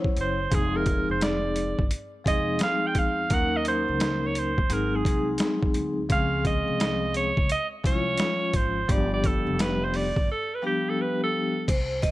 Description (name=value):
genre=hip hop, jazz-hop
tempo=86 BPM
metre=4/4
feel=swing 66% on 16ths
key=unclear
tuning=A4 = 440 Hz
part: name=vibraphone with medium hard mallets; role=accompaniment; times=0.0-12.1 s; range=F3 to Eb5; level=-28 LUFS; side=left 2 dB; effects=none
part: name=boom bap sampler-style drum kit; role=drums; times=0.0-12.1 s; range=crash cymbal, hi-hat, kick drum, snare drum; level=-26 LUFS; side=equal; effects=overdrive
part: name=edgy alto saxophone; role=melody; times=0.2-11.7 s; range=G4 to G5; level=-28 LUFS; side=right 3 dB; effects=none
part: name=upright bass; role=bass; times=0.2-12.1 s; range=F1 to E2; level=-32 LUFS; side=equal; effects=none
room=light reverb, small room ambience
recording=none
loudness=-23 LUFS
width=side -17 dB against mid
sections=0.0-11.7 A section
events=alto saxophone solo 0.0-11.7; break 10.3-11.7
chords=0.0 F#7(no3); 0.5 Fm7; 3.3 Ebm7; 4.7 Ab7; 6.1 Dbmaj7; 8.9 G7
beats=| 0.52 1.22 1.91 2.61 | 3.31 4.01 4.70 5.40 | 6.10 6.80 7.50 8.19 | 8.89 9.59 10.29 10.98 | 11.68